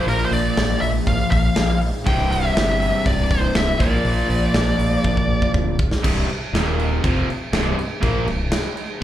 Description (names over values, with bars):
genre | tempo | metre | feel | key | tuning
hard rock | 121 BPM | 4/4 | straight | unclear | A4 = 435 Hz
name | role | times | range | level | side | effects
high-gain lead guitar | melody | 0.0-5.5 s | Bb4 to G5 | -23 LUFS | left 1 dB | distortion, slapback echo, digital delay
overdriven semi-hollow guitar | riff | 0.0-9.0 s | C2 to Bb3 | -22 LUFS | equal | none
growling fingered electric bass | bass | 0.1-8.5 s | C1 to Bb1 | -22 LUFS | equal | overdrive
big rock drum kit | drums | 0.1-8.9 s | crash cymbal, hi-hat, kick drum, snare drum | -22 LUFS | equal | none
room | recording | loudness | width
light reverb | live gig heard through the venue's PA, club reverb | -17 LUFS | side -12 dB against mid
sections
0.0-6.0 A section; 6.0-9.0 B section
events
drum fill 5.0-6.0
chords
0.0 Bb; 2.1 C; 3.8 Bb; 6.0 C5; 6.5 Eb5; 7.0 C5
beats
| 0.07 0.57 1.07 1.56 | 2.06 2.56 3.06 3.56 | 4.05 4.55 5.05 5.54 | 6.04 6.54 7.03 7.53 | 8.02 8.52 9.02